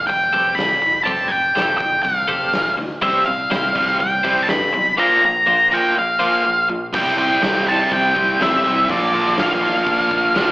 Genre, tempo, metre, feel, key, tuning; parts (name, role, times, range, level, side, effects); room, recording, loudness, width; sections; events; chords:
quiet-loud alternative rock; 123 BPM; 4/4; straight; A4 = 440 Hz
octave-fuzz lead guitar; melody; 0.0-10.5 s; D5 to B5; -16 LUFS; equal; distortion, slapback echo
picked electric bass; bass; 0.0-10.5 s; F1 to G2; -30 LUFS; equal
twelve-string electric guitar; arpeggios; 0.1-6.7 s; G3 to C5; -25 LUFS; left 1 dB; tremolo, slapback echo, tape echo
big rock drum kit; drums; 0.1-10.5 s; crash cymbal, hi-hat, kick drum, snare drum; -26 LUFS; equal
overdriven semi-hollow guitar; riff; 3.0-10.5 s; Bb2 to E4; -21 LUFS; right 2 dB; slapback echo
thick fuzz guitar; riff; 6.9-10.5 s; Bb2 to E4; -26 LUFS; left 3 dB; distortion, slapback echo
light reverb, studio reverb; live gig heard through the venue's PA, club reverb, AM radio sound; -15 LUFS; side -20 dB against mid
0.0-6.9 A section; 6.9-10.5 B section
0.0 Fadd9; 3.0 C; 5.0 Bbadd9; 6.9 C; 8.9 Bb